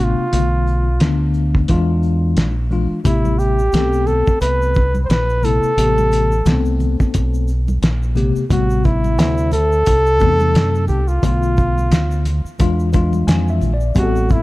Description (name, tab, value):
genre	hip hop, jazz-hop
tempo	88 BPM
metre	4/4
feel	swing 58% on 16ths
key	unclear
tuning	A4 = 441 Hz
part	trumpet with bucket mute	melody	0.0-14.4 s	E4 to C5	-19 LUFS	right 1 dB	none
part	tine electric piano	accompaniment	0.0-14.4 s	B2 to G#5	-21 LUFS	left 4 dB	medium stereo tremolo
part	deep dub fingered electric bass	bass	0.0-14.4 s	A1 to F#2	-18 LUFS	equal	none
part	cloth-damped thuddy drum kit	drums	0.3-14.4 s	hi-hat, kick drum, shaker, snare drum	-17 LUFS	equal	none
part	tube shaker and congas	percussion	3.1-14.4 s	none	-31 LUFS	right 3 dB	none
room	small room reverb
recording	dark, warm production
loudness	-14 LUFS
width	side -18 dB against mid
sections	0.0-8.5 A section; 8.5-14.4 B section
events	tine electric piano fill 12.9-14.0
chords	0.3 Bm7b5; 1.7 E7b9; 3.1 Am9; 11.2 Bm7b5; 12.6 E7b9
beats	| 0.33 1.01 1.69 2.37 | 3.05 3.73 4.42 5.10 | 5.78 6.46 7.14 7.83 | 8.51 9.19 9.87 10.55 | 11.23 11.92 12.60 13.28 | 13.96